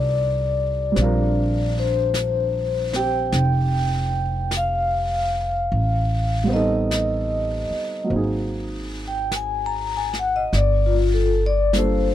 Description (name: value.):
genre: jazz ballad.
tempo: 50 BPM.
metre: 4/4.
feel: swing 66% on 8ths.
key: unclear.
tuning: A4 = 439 Hz.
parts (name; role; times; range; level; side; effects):
vibraphone with medium mallets; melody; 0.0-12.1 s; F4 to Bb5; -23 LUFS; left 3 dB; none.
dark grand piano; accompaniment; 0.0-12.1 s; Gb3 to Bb4; -27 LUFS; right 2 dB; none.
upright bass; bass; 0.0-12.1 s; F1 to C2; -23 LUFS; equal; none.
jazz brush drum kit; drums; 1.0-12.1 s; brushed snare drum, hi-hat, snare drum; -33 LUFS; left 1 dB; none.
room: small room reverb.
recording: dry, close 1970s-style studio recording.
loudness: -19 LUFS.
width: side -12 dB against mid.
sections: 0.0-12.1 A section.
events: vibraphone solo 0.0-12.1.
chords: 0.0 F13; 1.0 Bb69; 5.7 Am7b5; 8.1 Ab9; 10.5 Gm9.